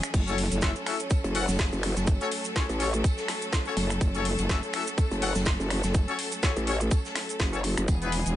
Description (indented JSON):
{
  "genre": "bass house",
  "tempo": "124 BPM",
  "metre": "4/4",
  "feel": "swing 56% on 16ths",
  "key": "F# minor",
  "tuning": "A4 = 441 Hz",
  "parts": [
    { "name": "bright studio string section", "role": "sustained chords", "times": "0.0-8.4 s", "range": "E3 to A4", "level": "-33 LUFS", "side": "left 1 dB", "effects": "sidechain pumping" },
    { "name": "garage drum kit", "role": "drums", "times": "0.0-8.3 s", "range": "crash cymbal, finger snaps, hi-hat, snare drum", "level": "-32 LUFS", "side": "left 1 dB", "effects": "none" },
    { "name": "maracas", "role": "percussion", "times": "0.0-8.3 s", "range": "none", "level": "-39 LUFS", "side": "right 5 dB", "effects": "none" },
    { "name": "metallic wobble bass", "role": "bass", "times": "0.1-8.4 s", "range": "E1 to F#1", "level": "-28 LUFS", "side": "equal", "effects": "chorus, tube saturation, sidechain pumping" },
    { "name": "electronic kick drum", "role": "drums", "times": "0.1-8.0 s", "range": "none", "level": "-25 LUFS", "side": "equal", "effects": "none" },
    { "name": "modern studio drum kit", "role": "drums", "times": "0.1-8.4 s", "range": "hi-hat, snare drum, tambourine", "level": "-42 LUFS", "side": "right 1 dB", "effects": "none" },
    { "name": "brilliant horn section", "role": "stabs", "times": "0.3-8.1 s", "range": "B3 to F#5", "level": "-34 LUFS", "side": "left 5 dB", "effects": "sidechain pumping, tape echo" },
    { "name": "growl bass", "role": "bass", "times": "1.2-7.9 s", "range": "F#1 to A1", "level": "-28 LUFS", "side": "equal", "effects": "chorus, overdrive, sidechain pumping" }
  ],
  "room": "small room reverb",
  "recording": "nothing above 10.4 kHz",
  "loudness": "-24 LUFS",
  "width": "side -13 dB against mid",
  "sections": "0.0-8.4 A section",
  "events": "none",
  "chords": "0.1 F#m"
}